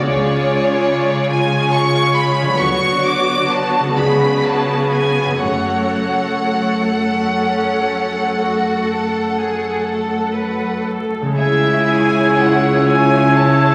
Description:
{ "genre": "classical, slow romantic movement for symphony orchestra", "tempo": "39-48 BPM (dotted quarters)", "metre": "12/8", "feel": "rubato", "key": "F# minor", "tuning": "A4 = 441 Hz", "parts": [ { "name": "rich chamber violin section", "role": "melody", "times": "0.0-13.7 s", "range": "C#5 to D6", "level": "-22 LUFS", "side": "equal", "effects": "none" }, { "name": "warm chamber violin section", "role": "second line", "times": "0.0-13.7 s", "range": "C#4 to D5", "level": "-26 LUFS", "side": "equal", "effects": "none" }, { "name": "rich studio viola section", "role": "accompaniment", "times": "0.0-13.7 s", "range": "G#3 to A4", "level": "-23 LUFS", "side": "equal", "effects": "none" }, { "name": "concert harp", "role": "arpeggios", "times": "0.0-13.7 s", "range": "F#2 to D5", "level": "-26 LUFS", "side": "equal", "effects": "none" }, { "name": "warm chamber cello section", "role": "bass", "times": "0.0-13.7 s", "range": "F#2 to D3", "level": "-26 LUFS", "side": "equal", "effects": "none" }, { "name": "clear chamber double bass section", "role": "bass", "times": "0.1-13.7 s", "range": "F#1 to D2", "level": "-25 LUFS", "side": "equal", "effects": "none" }, { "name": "mellow cor anglais", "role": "second line", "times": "11.4-13.7 s", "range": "E5", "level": "-23 LUFS", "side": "equal", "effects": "none" }, { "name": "small flute group", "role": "second line", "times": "11.4-13.7 s", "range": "G#6", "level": "-23 LUFS", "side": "equal", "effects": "none" }, { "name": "warm clarinet", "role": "second line", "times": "11.4-13.7 s", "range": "E4", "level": "-23 LUFS", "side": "equal", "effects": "none" }, { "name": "dark French horn section", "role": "sustained chords", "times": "12.4-12.6 s", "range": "G#3 to E4", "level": "-27 LUFS", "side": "equal", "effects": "none" } ], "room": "wet recital hall reverb, RT60 1.7 s", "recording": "vinyl crackle", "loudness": "-16 LUFS", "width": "mono", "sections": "0.0-11.4 A section; 11.4-13.7 B section", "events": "none", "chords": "0.1 C#; 2.6 Bm/D; 4.0 C#7b9; 5.4 F#m; 11.4 C#m" }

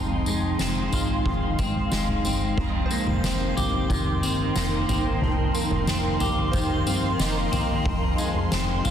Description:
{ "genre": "dream pop", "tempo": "91 BPM", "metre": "4/4", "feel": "straight", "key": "unclear", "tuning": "A4 = 440 Hz", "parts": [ { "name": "ethereal airy pad", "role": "sustained chords", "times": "0.0-8.9 s", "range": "Ab3 to C6", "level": "-29 LUFS", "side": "right 3 dB", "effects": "ensemble chorus, built-in reverb, shimmer reverb" }, { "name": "clean electric guitar", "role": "arpeggios", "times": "0.0-8.9 s", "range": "F2 to G4", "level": "-27 LUFS", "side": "left 2 dB", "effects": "lush chorus, tape echo, shimmer reverb" }, { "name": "plucky analog bass", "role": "bass", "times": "0.0-8.9 s", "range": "F1 to Ab1", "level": "-29 LUFS", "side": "equal", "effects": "none" }, { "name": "soft-mallet drum kit", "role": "drums", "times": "0.3-8.9 s", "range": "crash cymbal, kick drum, snare drum, tambourine, toms", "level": "-27 LUFS", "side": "equal", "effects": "none" }, { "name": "shimmering bell with halo", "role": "texture", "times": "2.9-8.2 s", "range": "C5 to Bb5", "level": "-38 LUFS", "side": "right 1 dB", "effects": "ensemble chorus, tape echo, shimmer reverb" } ], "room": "moderate huge ambient reverb, RT60 4.2 s", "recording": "dense, heavily limited modern master", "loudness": "-22 LUFS", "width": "side -9 dB against mid", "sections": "0.0-2.6 A section; 2.6-8.9 B section", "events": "none", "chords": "0.0 Fm7; 2.6 Cm7/F; 7.9 Fm" }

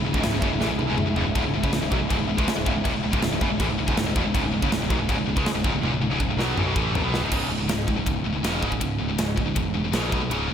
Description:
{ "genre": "heavy metal", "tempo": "161 BPM", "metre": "4/4", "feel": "straight", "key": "C# minor", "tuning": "A4 = 445 Hz", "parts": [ { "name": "dark symphonic string section", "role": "sustained chords", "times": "0.0-7.3 s", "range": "C#3 to E4", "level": "-34 LUFS", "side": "left 2 dB", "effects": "none" }, { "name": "heavy high-gain guitar", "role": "riff", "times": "0.0-10.5 s", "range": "C#2 to B3", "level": "-28 LUFS", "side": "left 9 dB", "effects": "distortion" }, { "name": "heavy high-gain guitar", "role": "riff", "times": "0.0-7.3 s", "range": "C#2 to B3", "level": "-32 LUFS", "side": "equal", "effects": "distortion, slapback echo" }, { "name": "high-gain distorted guitar", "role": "riff", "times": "0.0-10.5 s", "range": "C#2 to B3", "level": "-29 LUFS", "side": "right 8 dB", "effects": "distortion, slapback echo" }, { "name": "modern bright picked electric bass", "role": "bass", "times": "0.0-10.5 s", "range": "C#1 to C#2", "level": "-29 LUFS", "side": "equal", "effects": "none" }, { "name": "tight metal drum kit", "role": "drums", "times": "0.1-10.4 s", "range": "crash cymbal, kick drum, ride cymbal, snare drum, toms", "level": "-26 LUFS", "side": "equal", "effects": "none" } ], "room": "moderate lush hall reverb, RT60 1.7 s, small room ambience", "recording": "big arena sound", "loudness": "-21 LUFS", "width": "side -8 dB against mid", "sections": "0.0-7.3 A section; 7.3-10.5 B section", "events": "drum fill 0.6-1.4, 5.8-7.3", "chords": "0.0 C#m; 10.1 B5" }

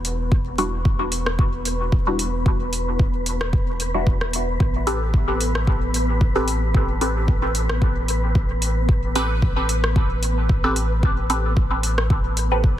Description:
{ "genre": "dub techno", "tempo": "112 BPM", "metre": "4/4", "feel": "swing 55% on 16ths", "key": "unclear", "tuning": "A4 = 440 Hz", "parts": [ { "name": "soft dub sub bass", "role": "bass", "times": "0.0-12.8 s", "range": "E1 to A1", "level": "-24 LUFS", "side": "equal", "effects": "tube saturation, sidechain pumping" }, { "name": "deep house drum kit", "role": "drums", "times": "0.0-12.5 s", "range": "hi-hat, rim click", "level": "-27 LUFS", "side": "equal", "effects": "soft clipping on snare, dub echo" }, { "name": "wind-like tuned noise texture", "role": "texture", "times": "0.0-12.8 s", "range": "B3 to B4", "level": "-29 LUFS", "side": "equal", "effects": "built-in reverb, sidechain pumping" }, { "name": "electronic kick drum", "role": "drums", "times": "0.3-12.8 s", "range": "none", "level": "-19 LUFS", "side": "equal", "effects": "none" }, { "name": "filtered dub chord stab", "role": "stabs", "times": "0.6-12.7 s", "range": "G3 to B4", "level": "-26 LUFS", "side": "equal", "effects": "phaser, sidechain pumping, dub echo" } ], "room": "little or no reverb", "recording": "dense, heavily limited modern master, vinyl crackle", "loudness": "-18 LUFS", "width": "side -12 dB against mid", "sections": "0.0-12.8 A section", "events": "none", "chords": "0.0 Em9; 4.6 Am9" }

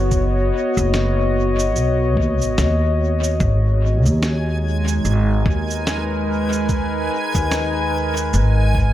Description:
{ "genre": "ambient dub", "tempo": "73 BPM", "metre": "4/4", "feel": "swing 60% on 16ths", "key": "G# minor", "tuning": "A4 = 440 Hz", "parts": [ { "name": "warbly tape-like pad", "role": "sustained chords", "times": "0.0-8.9 s", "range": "G#3 to D#5", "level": "-21 LUFS", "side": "left 1 dB", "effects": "chorus, built-in reverb" }, { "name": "upright bass", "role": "bass", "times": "0.0-8.9 s", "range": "F#1 to D#2", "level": "-19 LUFS", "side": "equal", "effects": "none" }, { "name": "electronic cabasa and snare drum", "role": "drums", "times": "0.1-8.5 s", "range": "none", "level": "-28 LUFS", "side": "right 1 dB", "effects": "small room reverb, dub echo" }, { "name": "electronic kick drum", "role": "drums", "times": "0.1-8.9 s", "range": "none", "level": "-22 LUFS", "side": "equal", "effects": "small room reverb" }, { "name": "backwards swelling texture", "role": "texture", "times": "4.3-8.9 s", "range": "G#5", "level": "-27 LUFS", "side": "right 1 dB", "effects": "built-in reverb" } ], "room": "light reverb, digital ambience", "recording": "echo-heavy mix", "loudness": "-16 LUFS", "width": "side -13 dB against mid", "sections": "0.0-8.9 A section", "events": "none", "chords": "0.0 B; 3.4 G#m7" }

